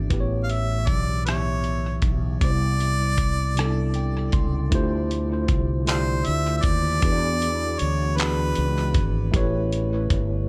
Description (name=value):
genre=slow six-eight R&B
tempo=52 BPM (dotted quarters)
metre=6/8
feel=straight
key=D dorian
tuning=A4 = 440 Hz
part: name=tine electric piano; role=accompaniment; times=0.0-10.5 s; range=A2 to C6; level=-29 LUFS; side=equal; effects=overdrive, tape echo
part: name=fretless electric bass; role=bass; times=0.0-10.5 s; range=G1 to E2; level=-27 LUFS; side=equal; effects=ensemble chorus
part: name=dusty soul sampler-style drum kit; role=drums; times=0.1-10.3 s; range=handclaps, hi-hat, kick drum, rim click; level=-27 LUFS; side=equal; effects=none
part: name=bright harmonica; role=melody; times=0.4-9.0 s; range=F4 to F5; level=-31 LUFS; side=equal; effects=tape echo
room=digital ambience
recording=echo-heavy mix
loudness=-23 LUFS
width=mono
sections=0.0-4.7 A section; 4.7-10.5 B section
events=tine electric piano fill 3.6-4.7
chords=0.1 A7; 2.4 Cmaj9; 4.7 Dm11; 7.0 E13; 9.3 A7